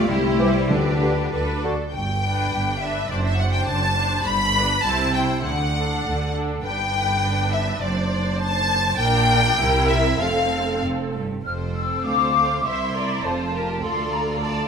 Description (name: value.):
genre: quick classical-period movement for symphony orchestra.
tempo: 102 BPM.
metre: 2/4.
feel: rubato.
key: G major, F major from 9.0 s.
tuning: A4 = 441 Hz.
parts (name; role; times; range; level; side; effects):
rich studio violin section; melody; 0.0-14.7 s; A4 to B5; -25 LUFS; left 3 dB; none.
clear studio violin section; second line; 0.0-14.7 s; C4 to B5; -28 LUFS; left 1 dB; none.
clear studio viola section; accompaniment; 0.0-14.7 s; C4 to E5; -27 LUFS; right 1 dB; none.
warm French horn section; sustained chords; 0.0-1.6 s; E4 to B4; -26 LUFS; left 6 dB; none.
bright studio cello section; bass; 0.0-14.7 s; C2 to A3; -27 LUFS; right 2 dB; none.
clear studio double bass section; bass; 0.0-14.7 s; F1 to D2; -26 LUFS; right 2 dB; none.
timpani; percussion; 0.0-1.3 s; D3; -27 LUFS; equal; none.
large flute ensemble; second line; 0.4-1.8, 11.5-14.7 s; B4 to F6; -24 LUFS; left 3 dB; none.
warm clarinet; second line; 0.4-1.7 s; F#4 to G4; -33 LUFS; left 2 dB; none.
warm bassoon; accompaniment; 0.4-1.7 s; D3 to E3; -31 LUFS; right 1 dB; none.
room: moderate scoring stage reverb, RT60 1.7 s.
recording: none.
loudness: -19 LUFS.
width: side -6 dB against mid.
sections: 0.0-1.9 A section; 1.9-11.5 B section; 11.5-14.7 C section.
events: none.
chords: 0.1 C; 0.7 G/D; 1.3 D; 1.9 G; 3.1 D7/F#; 4.3 G; 4.8 Am/C; 5.5 D; 6.7 G; 7.8 D7/F#; 9.0 Gm/Bb; 9.6 C7; 10.2 F; 12.7 C7; 13.2 F; 13.8 Dm.